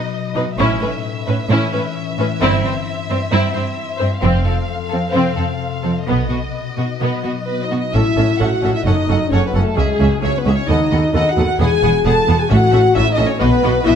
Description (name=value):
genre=cinematic, heroic adventure film score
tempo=132 BPM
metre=4/4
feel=straight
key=unclear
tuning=A4 = 440 Hz
part: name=warm symphonic violin section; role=melody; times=0.0-13.9 s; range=D#5 to F#5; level=-28 LUFS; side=left 2 dB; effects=none
part: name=concert harp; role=arpeggios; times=0.0-14.0 s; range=F2 to D#5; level=-24 LUFS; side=left 10 dB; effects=none
part: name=warm symphonic violin section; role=second line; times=0.4-14.0 s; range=B3 to A5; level=-22 LUFS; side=equal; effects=none
part: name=rich studio viola section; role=accompaniment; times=0.4-13.9 s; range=B3 to A4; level=-24 LUFS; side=right 1 dB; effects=none
part: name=rich symphonic cello section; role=bass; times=0.4-14.0 s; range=C#2 to B2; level=-20 LUFS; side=right 3 dB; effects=none
part: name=clear symphonic double bass section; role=bass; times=0.6-14.0 s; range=E1 to D#2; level=-20 LUFS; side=right 3 dB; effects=none
part: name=dark French horn section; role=sustained chords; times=7.5-14.0 s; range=G#3 to A4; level=-18 LUFS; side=left 3 dB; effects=none
part: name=timpani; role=percussion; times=12.5-13.1 s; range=A2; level=-22 LUFS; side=equal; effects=none
room=moderate scoring stage reverb, RT60 1.4 s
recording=close, detailed microphones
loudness=-14 LUFS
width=side -8 dB against mid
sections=0.0-7.9 A section; 7.9-14.0 B section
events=build-up 0.0-7.9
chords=0.0 B; 0.6 Aadd9; 2.4 C/G; 4.2 F; 6.1 B; 7.9 A; 8.9 F#m; 9.8 C#m; 10.7 B7/D#; 11.6 Eadd9; 12.5 A; 13.4 B